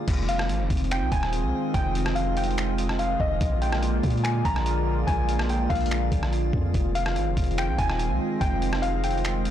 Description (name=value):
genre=hip hop, atmospheric cloud-rap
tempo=144 BPM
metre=4/4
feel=half-time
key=F dorian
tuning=A4 = 441 Hz
part: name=warbly dusty pluck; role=melody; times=0.0-9.5 s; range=Eb5 to Bb5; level=-30 LUFS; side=left 2 dB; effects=chorus, ping-pong delay
part: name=warm analog pad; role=sustained chords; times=0.0-9.5 s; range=D3 to F4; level=-29 LUFS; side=right 2 dB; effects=chorus, sidechain pumping
part: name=drifting glass-harmonics texture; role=texture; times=0.0-9.5 s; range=Ab3 to Eb5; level=-38 LUFS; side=equal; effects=chorus, built-in reverb
part: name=long sustained 808-style bass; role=bass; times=0.1-9.5 s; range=Eb1 to Bb2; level=-27 LUFS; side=equal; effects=tube saturation
part: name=trip hop sampler-style drum kit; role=drums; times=0.1-9.5 s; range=crash cymbal, finger snaps, hi-hat, kick drum, rim click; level=-29 LUFS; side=equal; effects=overdrive, soft clipping on snare
room=digital ambience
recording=blown-out, overdriven recording, overdrive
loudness=-22 LUFS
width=side -11 dB against mid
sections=0.1-9.5 A section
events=none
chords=0.1 Fm7; 3.4 Bb7; 6.7 Fm7